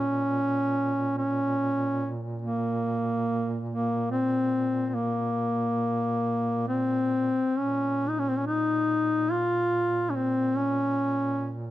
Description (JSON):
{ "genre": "caucasian folk, Caucasian lament", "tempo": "71 BPM", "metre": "3/4", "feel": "rubato", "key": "Bb minor", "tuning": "A4 = 440 Hz", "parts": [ { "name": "mellow duduk", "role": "melody", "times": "0.0-11.6 s", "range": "Bb3 to F4", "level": "-25 LUFS", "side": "equal", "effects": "none" }, { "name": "mellow duduk", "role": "drone", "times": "0.0-11.7 s", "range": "Bb2", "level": "-34 LUFS", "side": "right 2 dB", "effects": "none" } ], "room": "light reverb", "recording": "close, detailed microphones", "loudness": "-24 LUFS", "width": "side -14 dB against mid", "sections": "0.0-7.6 A section; 7.6-11.7 B section", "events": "none", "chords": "none" }